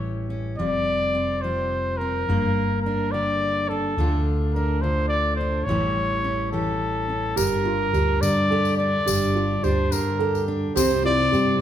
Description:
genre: indie folk with a building arrangement.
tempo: 71 BPM (dotted quarters).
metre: 6/8.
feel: straight.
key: unclear.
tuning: A4 = 440 Hz.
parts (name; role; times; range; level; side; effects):
warm trumpet; melody; 0.0-11.6 s; A4 to D5; -24 LUFS; left 1 dB; none.
fingerpicked steel-string acoustic guitar; accompaniment; 0.0-11.6 s; D2 to G4; -26 LUFS; left 1 dB; none.
fingered electric bass; bass; 0.0-11.6 s; F1 to G2; -27 LUFS; equal; none.
dark upright piano; arpeggios; 7.4-11.6 s; F4 to A4; -26 LUFS; right 6 dB; none.
tambourine; percussion; 7.4-11.4 s; none; -32 LUFS; left 8 dB; none.
picked twelve-string acoustic guitar; accompaniment; 10.8-11.6 s; C3 to C5; -29 LUFS; left 1 dB; none.
room: wet large studio reverb, RT60 1.4 s.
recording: band playing live in one room.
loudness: -20 LUFS.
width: side -10 dB against mid.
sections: 0.0-7.4 A section; 7.4-11.6 B section.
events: none.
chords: 0.0 A7; 0.6 Fsus2; 2.3 Gm; 4.0 Dm; 5.7 A7; 7.4 Gm; 10.8 C.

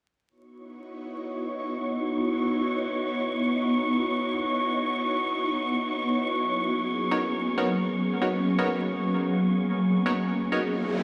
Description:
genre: drum and bass.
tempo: free time.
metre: none.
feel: none.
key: C# dorian.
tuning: A4 = 439 Hz.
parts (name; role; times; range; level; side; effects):
ethereal airy pad; sustained chords; 1.0-11.0 s; F#3 to C#5; -29 LUFS; equal; ensemble chorus, built-in reverb, phaser, vintage 12-bit sampler grit.
wind-like tuned noise texture; texture; 1.2-10.6 s; C#6; -34 LUFS; equal; built-in reverb.
band-passed chord stab; stabs; 7.1-10.6 s; B3 to C#5; -32 LUFS; equal; chorus, vintage 12-bit sampler grit, dub echo.
noise sweep; sound effects; 10.7-11.0 s; none; -35 LUFS; equal; none.
room: wet lush hall reverb, RT60 2.9 s.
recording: played on a big sound system in a bare room, large studio reverb, vinyl crackle.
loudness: -27 LUFS.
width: mono.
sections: 0.3-11.0 A section.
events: noise sweep 10.7-11.0.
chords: 0.3 C#m11; 6.2 G#m11.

